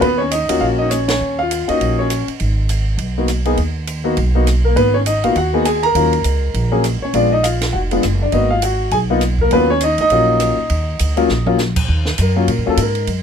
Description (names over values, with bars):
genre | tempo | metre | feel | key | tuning
jazz piano trio | 202 BPM | 4/4 | swing 60% on 8ths | Eb minor | A4 = 440 Hz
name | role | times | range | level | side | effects
warm concert grand piano | melody | 0.0-13.1 s | Gb3 to Bb5 | -16 LUFS | left 2 dB | none
upright bass | bass | 0.0-13.2 s | F1 to Bb2 | -18 LUFS | right 1 dB | none
compact cocktail drum kit | drums | 0.0-13.2 s | crash cymbal, hi-hat, kick drum, ride cymbal, rim click, snare drum, toms | -25 LUFS | right 4 dB | none
room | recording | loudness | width
little or no reverb | minimal, uncompressed stereo recording | -14 LUFS | side -7 dB against mid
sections
0.0-11.9 A section; 11.9-13.2 B section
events
band accent 1.1; drum fill 11.3; grand piano solo 11.9-13.2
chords
0.0 Ebm7; 2.4 Abm7; 5.9 Ebm7; 7.1 Bb7b9; 8.3 Abm7; 9.5 Ebm7; 11.9 Ebm